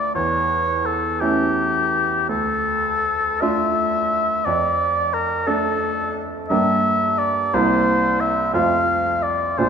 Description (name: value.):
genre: classical, romantic duo for oboe and grand piano.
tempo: 52-60 BPM (dotted quarters).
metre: 6/8.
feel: rubato.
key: D minor.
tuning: A4 = 436 Hz.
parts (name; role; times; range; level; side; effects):
warm oboe; melody; 0.0-9.7 s; G4 to F5; -19 LUFS; left 2 dB; none.
bright concert grand piano; accompaniment; 0.0-9.7 s; Bb1 to A4; -22 LUFS; right 3 dB; none.
room: wet recital hall reverb, RT60 1.9 s.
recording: none.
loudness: -18 LUFS.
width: side -7 dB against mid.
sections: 0.0-9.7 A section.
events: none.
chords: 0.2 A7/E; 2.3 Dm; 4.5 Dm/F; 6.5 Gm; 7.5 C7; 8.5 F.